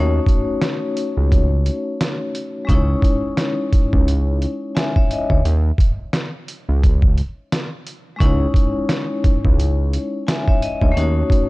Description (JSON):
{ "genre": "hip hop, boom-bap hip-hop", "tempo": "87 BPM", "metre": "4/4", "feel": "swing 58% on 16ths", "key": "C# minor", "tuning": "A4 = 440 Hz", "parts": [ { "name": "vibraphone with hard mallets", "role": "accompaniment", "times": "0.0-11.5 s", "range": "G#3 to G#5", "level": "-22 LUFS", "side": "left 2 dB", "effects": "high-pass filter, low-pass filter" }, { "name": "fat analog bass", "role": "bass", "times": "0.0-11.2 s", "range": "C#2 to D#2", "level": "-17 LUFS", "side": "equal", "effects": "none" }, { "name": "trip hop sampler-style drum kit", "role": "drums", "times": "0.3-11.5 s", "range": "hi-hat, kick drum, snare drum", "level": "-18 LUFS", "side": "equal", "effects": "vintage 12-bit sampler grit" } ], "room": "digital ambience", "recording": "dark, warm production", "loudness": "-16 LUFS", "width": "side -21 dB against mid", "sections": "0.0-11.5 A section", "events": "none", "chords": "0.0 D#m7b5; 2.7 C#madd9; 5.4 C#sus2; 8.2 C#madd9; 11.0 D#m7b5", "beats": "0.62 1.31 2.00 | 2.69 3.38 4.07 4.75 | 5.44 6.13 6.82 7.51 | 8.20 8.89 9.58 10.27 | 10.96" }